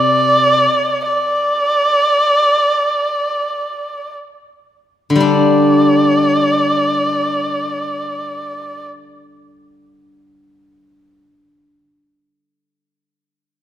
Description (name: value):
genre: chinese traditional, Chinese chamber ensemble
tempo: free time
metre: none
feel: none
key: unclear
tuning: A4 = 440 Hz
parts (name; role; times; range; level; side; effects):
- dark erhu; melody; 0.0-8.9 s; D5; -15 LUFS; right 1 dB; none
- steel-string zither; accompaniment; 0.0-11.7 s; C3 to D4; -15 LUFS; left 2 dB; none
room: wet concert hall reverb, RT60 1.7 s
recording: none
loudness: -12 LUFS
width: side -11 dB against mid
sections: 0.0-5.2 A section; 5.2-9.4 B section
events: slowing down 0.0-5.2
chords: none